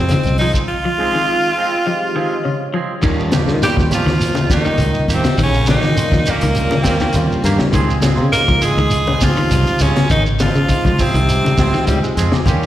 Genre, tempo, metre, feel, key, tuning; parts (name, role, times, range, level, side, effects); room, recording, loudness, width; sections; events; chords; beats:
afrobeat; 102 BPM; 4/4; straight; A4 = 440 Hz
raspy tenor saxophone; melody; 0.0-12.2 s; Bb3 to Bb4; -19 LUFS; equal; slapback echo
clear trombone; second line; 0.0-12.2 s; Bb2 to F4; -25 LUFS; right 3 dB; slapback echo
clean electric guitar; arpeggios; 0.0-12.7 s; Db3 to F3; -21 LUFS; left 3 dB; slapback echo
fingered electric bass; bass; 0.0-12.7 s; Ab1 to Eb3; -17 LUFS; equal
barky tine electric piano; accompaniment; 0.1-12.7 s; G3 to G5; -25 LUFS; left 2 dB; phaser, slapback echo
crunchy breakbeat drum kit; drums; 0.1-12.6 s; crash cymbal, hi-hat, kick drum, snare drum; -21 LUFS; equal
congas; percussion; 0.1-12.6 s; -24 LUFS; equal
shekere; percussion; 0.1-12.7 s; -24 LUFS; right 2 dB
twangy electric guitar; stabs; 0.4-12.7 s; Eb3 to Ab4; -26 LUFS; right 7 dB; slapback echo
breathy baritone saxophone; second line; 6.8-12.7 s; G3 to C4; -24 LUFS; left 2 dB; slapback echo
small room ambience; live gig heard through the venue's PA, recital hall reverb; -13 LUFS; side -13 dB against mid
0.0-3.0 A section; 3.0-12.7 B section
break 0.7-3.0; tine electric piano fill 1.3-3.0
0.0 Dbmaj7; 3.0 Eb7; 7.7 Dbmaj7
0.10 | 0.69 1.27 1.86 2.45 | 3.03 3.62 4.21 4.79 | 5.38 5.97 6.56 7.15 | 7.74 8.33 8.92 9.51 | 10.10 10.69 11.28 11.87 | 12.46